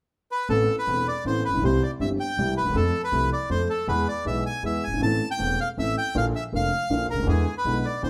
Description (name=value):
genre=tango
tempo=159 BPM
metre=3/4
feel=rubato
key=A minor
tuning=A4 = 440 Hz
part: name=bandoneon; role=melody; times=0.3-8.1 s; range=G#4 to A5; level=-29 LUFS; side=equal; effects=none
part: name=warm concert grand piano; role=accompaniment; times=0.5-8.1 s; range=E1 to A4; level=-28 LUFS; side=equal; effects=none
part: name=upright bass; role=bass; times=0.5-8.1 s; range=E1 to F2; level=-31 LUFS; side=equal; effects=none
room=moderate studio reverb, RT60 1.0 s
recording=band playing live in one room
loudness=-25 LUFS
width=mono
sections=0.5-8.1 A section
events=none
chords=0.5 Amadd9; 1.6 C; 2.8 F; 3.9 E; 5.0 Am; 6.2 Bb; 7.3 E7